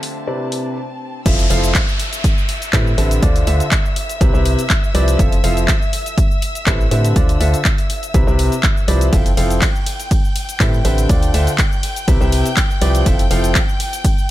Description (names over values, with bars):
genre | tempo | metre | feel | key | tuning
piano house | 122 BPM | 4/4 | swing 53% on 16ths | unclear | A4 = 439 Hz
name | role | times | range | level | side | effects
clear chamber violin section | sustained chords | 0.0-14.3 s | C4 to G6 | -28 LUFS | left 1 dB | vintage 12-bit sampler grit, sidechain pumping
warm grand piano | riff | 0.0-13.6 s | A2 to F5 | -21 LUFS | left 1 dB | sidechain pumping, tape echo
house drum kit | drums | 0.0-14.3 s | crash cymbal, handclaps, hi-hat, ride cymbal, shaker | -22 LUFS | left 1 dB | small room ambience
warbly tape-like pad | texture | 0.0-0.8 s | C4 to E5 | -34 LUFS | right 1 dB | chorus, built-in reverb, sidechain pumping
organ-like FM bass | bass | 1.3-13.5 s | F1 to A2 | -17 LUFS | equal | sidechain pumping
electronic kick drum | drums | 1.3-14.2 s | none | -16 LUFS | equal | small room ambience
downlifter | sound effects | 1.3-5.2 s | none | -26 LUFS | equal | none
room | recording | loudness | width
digital ambience | none | -14 LUFS | side -14 dB against mid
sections
0.0-1.3 A section; 1.3-14.3 B section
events
filter sweep 0.0-1.3; break 0.8-1.3; drop 1.3-14.3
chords
0.3 Cmaj9; 1.3 Fmaj7; 2.2 Am9; 3.2 Dm9; 4.2 Cmaj9; 5.2 Fmaj7; 6.2 Am9; 7.2 Dm9; 8.1 Cmaj9; 9.1 Fmaj7; 10.1 Am9; 11.1 Dm9; 12.1 Cmaj9; 13.1 Fmaj7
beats
0.27 0.77 | 1.26 1.75 2.24 2.73 | 3.23 3.72 4.21 4.70 | 5.19 5.68 6.18 6.67 | 7.16 7.65 8.14 8.63 | 9.13 9.62 10.11 10.60 | 11.09 11.59 12.08 12.57 | 13.06 13.55 14.04